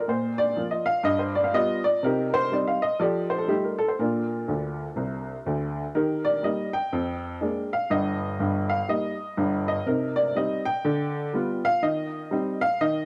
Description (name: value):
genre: jazz, stride piano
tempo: 122 BPM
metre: 4/4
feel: swing 62% on 8ths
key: Bb major, Eb major from 5.9 s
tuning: A4 = 439 Hz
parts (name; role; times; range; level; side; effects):
- clear upright piano; solo; 0.0-13.1 s; G1 to G5; -26 LUFS; equal; none
room: moderate spring reverb, RT60 2.6 s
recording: home recording on cassette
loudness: -26 LUFS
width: mono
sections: 0.0-5.9 A section; 5.9-13.1 B section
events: upright piano fill 4.5-5.9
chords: 0.1 Bb5; 1.1 G7; 2.0 Cm; 3.0 F9; 4.0 Bb; 5.9 Eb; 6.9 Bb7/F; 7.9 Eb/G; 9.9 Cm; 10.8 G7/D; 11.8 Cm/Eb